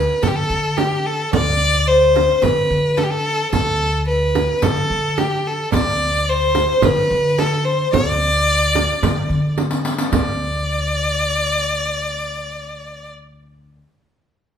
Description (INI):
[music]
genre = Turkish makam ensemble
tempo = 109 BPM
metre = 4/4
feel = straight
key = D makam huseyni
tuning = A4 = 440 Hz
[part]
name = bright violin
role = melody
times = 0.0-13.1 s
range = G4 to D5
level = -18 LUFS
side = left 1 dB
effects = none
[part]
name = upright bass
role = bass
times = 0.0-13.8 s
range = D2 to D3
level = -23 LUFS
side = left 1 dB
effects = none
[part]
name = frame drum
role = percussion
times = 0.2-10.4 s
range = none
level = -22 LUFS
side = right 4 dB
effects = none
[part]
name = riq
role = percussion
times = 0.2-10.4 s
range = none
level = -27 LUFS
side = equal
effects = none
[sound]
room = moderate large studio reverb, RT60 1.1 s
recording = band playing live in one room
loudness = -16 LUFS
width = side -8 dB against mid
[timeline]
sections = 0.0-10.1 A section; 10.1-12.3 B section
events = drum fill 9.6-10.1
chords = none